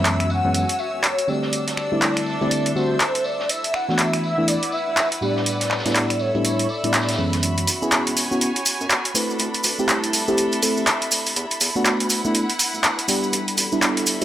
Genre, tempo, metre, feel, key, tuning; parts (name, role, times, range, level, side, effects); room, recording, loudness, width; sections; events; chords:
deep house; 122 BPM; 4/4; swing 60% on 16ths; F# phrygian; A4 = 439 Hz
mellow horn-like synth lead; melody; 0.0-7.2 s; C5 to F#5; -25 LUFS; equal; phaser, ensemble chorus, tape echo
mellow FM electric piano; stabs; 0.0-14.2 s; F#2 to B4; -23 LUFS; equal; chorus, phaser, low-pass filter, analog delay
clear studio string section; texture; 0.0-14.2 s; D4 to B5; -30 LUFS; equal
dark chamber violin section; texture; 0.0-14.2 s; B5 to E6; -34 LUFS; left 1 dB
open jazz drum kit; drums; 0.1-7.4 s; hi-hat, snare drum, tambourine; -34 LUFS; equal; high-pass filter on hats, low-pass filter on hats, high-pass filter on snare, low-pass filter on snare, high-pass filter on perc, low-pass filter on perc, high-pass filter on room, low-pass filter on room
punchy analog drum machine; drums; 0.1-14.2 s; finger snaps, handclaps, hi-hat; -21 LUFS; equal
round analog bass; bass; 7.4-14.2 s; D1 to F#2; -34 LUFS; equal; high-pass filter
cabasa; percussion; 7.4-14.2 s; -28 LUFS; right 2 dB
light reverb, studio reverb; dry, gritty hardware recording; -18 LUFS; side -12 dB against mid
0.0-7.4 A section; 7.4-14.2 B section
build-up 7.4-14.2; filter sweep on FM electric piano 7.4-14.2
0.0 F#9sus4; 1.3 D9sus4; 3.5 E9sus4; 5.5 A9sus4; 7.4 F#9sus4; 9.2 D9sus4; 11.4 E9sus4; 13.3 A9sus4